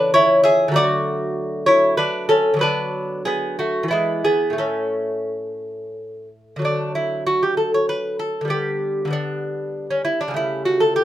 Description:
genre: classical, baroque-style dance for lute.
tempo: 85-99 BPM.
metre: 3/4.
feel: rubato.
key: A major, D major from 6.6 s.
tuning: A4 = 439 Hz.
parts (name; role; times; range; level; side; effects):
lute; solo; 0.0-11.0 s; A2 to E5; -18 LUFS; equal; none.
room: moderate studio ambience, RT60 0.5 s.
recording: minimal, uncompressed stereo recording.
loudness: -18 LUFS.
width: side -13 dB against mid.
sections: 0.0-6.6 A section; 6.6-11.0 A section.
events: none.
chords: 0.0 A/C#; 0.7 D; 2.6 Bm/D; 3.9 E; 4.6 A; 6.6 D; 8.5 G/D; 10.3 A7/C#.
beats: 0.14 | 0.75 1.36 1.98 | 2.61 3.25 3.90 | 4.59 5.28 5.97 | 6.64 7.28 7.90 | 8.51 9.13 9.74 | 10.35 10.96.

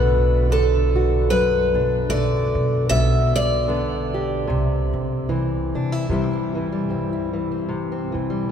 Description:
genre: acoustic folk duo or small band.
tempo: 75 BPM.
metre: 4/4.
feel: swing 56% on 8ths.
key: unclear.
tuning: A4 = 440 Hz.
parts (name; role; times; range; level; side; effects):
picked steel-string acoustic guitar; melody; 0.0-4.9 s; A4 to E5; -23 LUFS; equal; none.
fingerpicked steel-string acoustic guitar; accompaniment; 0.0-8.5 s; F#2 to G4; -24 LUFS; left 2 dB; none.
upright bass; bass; 0.0-8.5 s; B1 to C3; -22 LUFS; right 1 dB; none.
room: wet cathedral reverb, RT60 6.5 s.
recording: recorded in a church or concert hall.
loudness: -19 LUFS.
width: side -8 dB against mid.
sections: 0.0-6.1 A section; 6.1-8.5 B section.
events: none.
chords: 0.0 Bm7; 2.9 G/B; 4.5 C.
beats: 0.49 1.29 2.09 | 2.89 3.69 4.49 5.29 | 6.09 6.89 7.69 8.50.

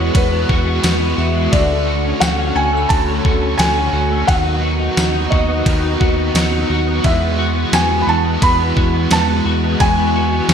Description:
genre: dream pop.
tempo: 87 BPM.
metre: 4/4.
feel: straight.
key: unclear.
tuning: A4 = 440 Hz.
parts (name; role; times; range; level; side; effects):
felt-muted upright piano; melody; 0.0-10.5 s; B4 to B5; -20 LUFS; equal; ping-pong delay.
overdriven electric guitar; accompaniment; 0.0-10.5 s; D3 to F#4; -24 LUFS; right 3 dB; tremolo, lush chorus.
string machine, violas; sustained chords; 0.0-10.5 s; D3 to G#5; -22 LUFS; right 1 dB; ensemble chorus.
clean electric guitar; arpeggios; 0.0-10.5 s; E2 to F#4; -22 LUFS; left 3 dB; ensemble chorus, ping-pong delay.
round analog bass; bass; 0.0-10.5 s; D2 to E2; -19 LUFS; equal; none.
detuned 8-bit digital drum machine; drums; 0.1-10.5 s; kick drum, ride cymbal, snare drum, tambourine; -17 LUFS; equal; overdrive, gated reverb.
vibraphone with hard mallets; texture; 0.1-5.0 s; E5 to C#6; -31 LUFS; right 1 dB; ping-pong delay.
room: moderate plate reverb, RT60 1.5 s.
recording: bright 1980s-style digital production.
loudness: -13 LUFS.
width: side -7 dB against mid.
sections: 0.0-10.5 A section.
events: none.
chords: 0.0 Eadd9; 1.5 Dmaj7; 4.3 B/D#; 7.0 Eadd9.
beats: 0.15 0.84 | 1.53 2.22 2.91 3.60 | 4.29 4.98 5.67 6.36 | 7.05 7.74 8.43 9.12 | 9.81 10.49.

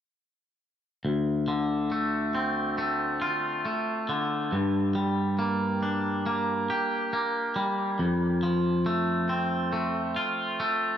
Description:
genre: rock.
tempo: 69 BPM.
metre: 4/4.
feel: straight.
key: D minor.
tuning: A4 = 440 Hz.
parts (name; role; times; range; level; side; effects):
twangy electric guitar; arpeggios; 1.0-11.0 s; D2 to G4; -25 LUFS; equal; spring reverb, tape echo.
room: moderate huge ambient reverb, RT60 4.6 s.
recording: dark, warm production.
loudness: -25 LUFS.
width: side -9 dB against mid.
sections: 1.0-11.0 A section.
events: none.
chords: 1.0 Dm7; 4.5 Gm; 8.0 F.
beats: | 1.04 1.91 2.78 3.65 | 4.51 5.38 6.25 7.12 | 7.99 8.86 9.73 10.60.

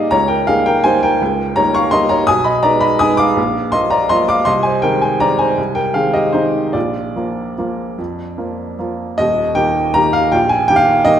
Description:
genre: classical, piano waltz.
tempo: 143-175 BPM.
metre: 3/4.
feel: rubato.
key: Eb major.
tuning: A4 = 440 Hz.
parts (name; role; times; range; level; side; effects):
warm upright piano; solo; 0.0-11.2 s; Eb1 to Eb6; -13 LUFS; equal; none.
room: moderate concert hall reverb, RT60 2.0 s.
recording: minimal, uncompressed stereo recording.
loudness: -13 LUFS.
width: side -9 dB against mid.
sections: 0.0-9.2 A section; 9.2-11.2 B section.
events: none.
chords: 0.1 Eb7/Db; 2.3 Abm/Cb; 3.4 Bb; 4.5 Ab/C; 6.7 Bb; 9.2 Eb.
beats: | 0.11 0.47 0.84 | 1.21 1.56 1.93 | 2.28 2.64 3.00 | 3.37 3.73 4.10 | 4.47 4.84 5.21 | 5.58 5.95 6.33 | 6.74 7.16 7.57 | 7.98 8.38 8.79 | 9.19 9.57 9.95 | 10.34 10.70 11.07.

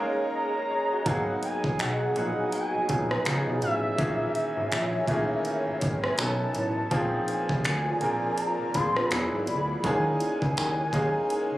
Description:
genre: contemporary R&B.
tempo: 82 BPM.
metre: 4/4.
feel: swing 58% on 16ths.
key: G# minor.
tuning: A4 = 440 Hz.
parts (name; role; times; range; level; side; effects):
clear concert grand piano; accompaniment; 0.0-11.6 s; D#3 to D#5; -29 LUFS; equal; none.
ethereal airy pad; sustained chords; 0.0-11.6 s; D#4 to A#5; -33 LUFS; equal; ensemble chorus, built-in reverb, sidechain pumping.
gliding portamento lead; melody; 0.3-11.6 s; E5 to B#5; -30 LUFS; equal; chorus, phaser.
fat analog bass; bass; 1.1-11.6 s; E1 to D#2; -30 LUFS; equal; none.
smooth R&B drum kit; drums; 1.1-11.5 s; finger snaps, hi-hat, kick drum, rim click; -31 LUFS; equal; none.
synth chime; texture; 1.8-3.6 s; D#5 to G#5; -40 LUFS; right 2 dB; ensemble chorus, tremolo, ping-pong delay.
room: light reverb.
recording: recorded on a phone in the room, club reverb.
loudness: -24 LUFS.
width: side -16 dB against mid.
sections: 0.0-1.1 A section; 1.1-11.6 B section.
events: break 0.0-1.1.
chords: 0.0 D#7sus4; 1.1 G#m7; 3.3 C#7; 4.0 C#m69/G#; 6.2 B9; 6.9 A#7; 9.1 E9; 9.8 D#7sus4.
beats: 0.33 | 1.06 1.79 2.52 3.26 | 3.99 4.72 5.45 6.18 | 6.92 7.65 8.38 9.11 | 9.84 10.57 11.30.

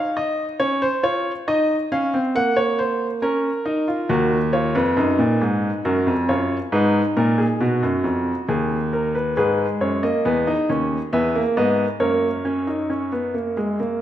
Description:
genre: classical, baroque-style 4-part fugue for grand piano.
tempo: 68 BPM.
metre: 3/4.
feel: straight.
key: Eb minor.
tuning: A4 = 437 Hz.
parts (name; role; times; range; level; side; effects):
clear baby grand piano; solo; 0.0-14.0 s; Eb2 to Gb5; -18 LUFS; equal; none.
room: wet recital hall reverb, RT60 1.7 s.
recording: none.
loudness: -18 LUFS.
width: side -11 dB against mid.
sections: 0.0-9.4 A section; 9.4-14.0 B section.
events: none.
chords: 0.0 N.C.; 0.6 Db; 1.5 Ebm; 3.2 Bbm/Db; 4.1 Ebm; 5.8 Gb; 6.7 Abm; 8.5 Eb5; 9.4 G#m; 11.1 Emaj7#11; 12.0 F#.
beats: 0.61 | 1.48 2.35 3.22 | 4.10 4.97 5.85 | 6.73 7.61 8.49 | 9.37 10.26 11.13 | 12.01 12.90 13.79.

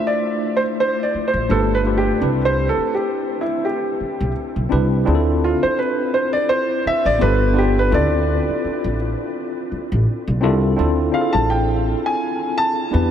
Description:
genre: R&B, neo-soul.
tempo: 84 BPM.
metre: 4/4.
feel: swing 55% on 16ths.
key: D dorian.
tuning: A4 = 444 Hz.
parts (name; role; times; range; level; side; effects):
warm concert grand piano; melody; 0.0-13.1 s; E4 to A5; -21 LUFS; equal; none.
tine electric piano; accompaniment; 0.0-13.1 s; A3 to C5; -21 LUFS; left 1 dB; medium stereo tremolo.
upright bass; bass; 1.1-13.1 s; G1 to E2; -20 LUFS; equal; none.
room: moderate huge ambient reverb, RT60 8.4 s.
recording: dreamy mix soaked in reverb.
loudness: -17 LUFS.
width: side -9 dB against mid.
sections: 0.0-10.8 A section; 10.8-13.1 B section.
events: grand piano solo 0.0-10.8.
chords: 0.0 Dm9; 1.5 G9; 2.2 Cmaj9; 5.1 Dm9; 7.2 G9; 7.9 Dm9.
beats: 0.05 0.77 1.48 | 2.20 2.91 3.63 4.34 | 5.05 5.77 6.48 7.20 | 7.91 8.63 9.34 10.05 | 10.77 11.48 12.20 12.91.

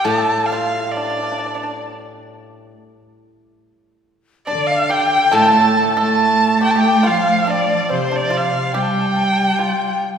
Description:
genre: chinese traditional, Chinese chamber ensemble.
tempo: 70 BPM.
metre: 4/4.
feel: rubato.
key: unclear.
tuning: A4 = 441 Hz.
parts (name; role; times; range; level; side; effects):
clear erhu; melody; 0.0-10.0 s; C5 to A5; -18 LUFS; right 2 dB; none.
pipa; second line; 0.0-10.0 s; C4 to A4; -22 LUFS; right 3 dB; none.
steel-string zither; accompaniment; 0.0-7.9 s; A2 to G3; -26 LUFS; left 4 dB; none.
clear cello; second line; 4.5-10.0 s; C3 to A3; -20 LUFS; right 2 dB; none.
reedy dizi; second line; 4.5-10.0 s; C5 to A5; -21 LUFS; left 5 dB; none.
room: wet concert hall reverb, RT60 2.3 s.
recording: recorded in a church or concert hall.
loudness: -14 LUFS.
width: side -7 dB against mid.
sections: 0.0-3.6 A section; 3.6-10.2 B section.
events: none.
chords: none.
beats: | 0.06 0.94 1.81 2.71 | 3.60 4.47 5.33 6.20 | 7.05 7.89 8.73 9.58.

